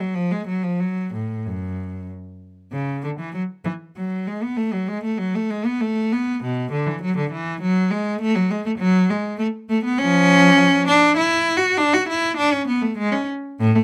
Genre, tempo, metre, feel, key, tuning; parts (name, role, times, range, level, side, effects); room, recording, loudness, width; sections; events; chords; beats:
classical, baroque-style suite movement for unaccompanied cello; 99 BPM; 3/4; rubato; A major; A4 = 441 Hz
rich cello; solo; 0.0-13.8 s; F#2 to F#4; -20 LUFS; equal
light reverb; close, detailed microphones; -20 LUFS; mono
0.0-2.7 A section; 2.7-13.8 A section
0.15 | 0.80 1.45 2.09 | 2.73 3.35 3.97 | 4.58 5.19 5.80 | 6.41 7.01 7.61 | 8.20 8.80 9.39 | 9.99 10.59 11.18 | 11.78 12.38 12.97 | 13.59